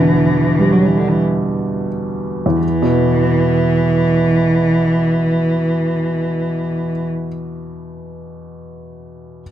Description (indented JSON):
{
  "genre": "celtic folk, Celtic slow air",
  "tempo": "27-34 BPM (dotted quarters)",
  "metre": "6/8",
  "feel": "rubato",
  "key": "E minor",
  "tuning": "A4 = 440 Hz",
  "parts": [
    { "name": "rich cello", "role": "melody", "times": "0.0-7.1 s", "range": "D3 to F#3", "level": "-16 LUFS", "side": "right 1 dB", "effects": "none" },
    { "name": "felt-muted upright piano", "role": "accompaniment", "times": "0.0-9.4 s", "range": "E2 to G3", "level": "-18 LUFS", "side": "equal", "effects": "none" }
  ],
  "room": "small room ambience",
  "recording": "dry, close 1970s-style studio recording",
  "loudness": "-14 LUFS",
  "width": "side -11 dB against mid",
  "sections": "0.0-2.6 A section; 2.6-6.9 B section",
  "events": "slowing down 0.0-2.6",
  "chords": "0.0 Em7; 2.6 E5"
}